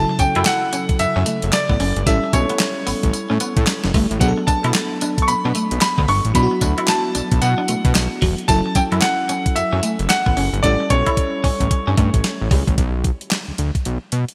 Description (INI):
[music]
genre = R&B, new jack swing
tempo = 112 BPM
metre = 4/4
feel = swing 61% on 16ths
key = B minor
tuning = A4 = 440 Hz
[part]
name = clear concert grand piano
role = melody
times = 0.0-12.5 s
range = C#5 to C#6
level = -24 LUFS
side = equal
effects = none
[part]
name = FM electric piano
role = accompaniment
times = 0.0-12.8 s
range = C#3 to A4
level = -27 LUFS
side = equal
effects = chorus
[part]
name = fat analog bass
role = bass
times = 0.0-14.2 s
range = E1 to B2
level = -23 LUFS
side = equal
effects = none
[part]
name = clean electric guitar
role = riff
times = 0.1-12.6 s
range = F#3 to E4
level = -28 LUFS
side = equal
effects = lush chorus
[part]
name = crisp 8-bit digital drum machine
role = drums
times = 0.2-14.3 s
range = handclaps, hi-hat, kick drum, snare drum, tambourine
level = -22 LUFS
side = equal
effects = overdrive, gated reverb
[sound]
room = moderate lush hall reverb, RT60 3.0 s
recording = bright 1980s-style digital production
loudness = -18 LUFS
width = mono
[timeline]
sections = 0.0-12.8 A section; 12.8-14.3 B section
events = drum fill 10.6-12.8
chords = 0.0 F#m7; 4.2 Bm7; 8.5 F#m7; 10.6 A7; 12.8 Bm